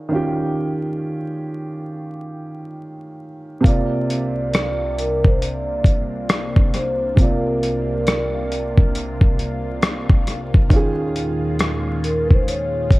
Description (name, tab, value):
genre	lo-fi hip hop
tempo	68 BPM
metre	4/4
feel	swing 63% on 16ths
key	unclear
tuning	A4 = 440 Hz
part	dark upright piano	accompaniment	0.0-13.0 s	C3 to D5	-24 LUFS	right 2 dB	cassette tape, low-pass filter
part	lush unison pad	sustained chords	3.6-13.0 s	C2 to F4	-27 LUFS	equal	chorus, phaser, low-pass filter
part	dusty soul sampler-style drum kit	drums	3.6-13.0 s	hi-hat, kick drum, rim click	-16 LUFS	equal	overdrive
part	vibraphone with soft mallets	melody	5.0-13.0 s	Bb4 to D5	-24 LUFS	left 1 dB	low-pass filter
room	light reverb, digital ambience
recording	dark, warm production, vinyl crackle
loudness	-17 LUFS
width	side -20 dB against mid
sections	0.0-3.6 A section; 3.6-13.0 B section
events	none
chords	0.0 Eb9sus4; 3.6 C9sus4; 10.7 Eb9sus4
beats	| 0.12 1.00 1.88 2.76 | 3.65 4.53 5.41 6.29 | 7.17 8.06 8.94 9.82 | 10.70 11.59 12.47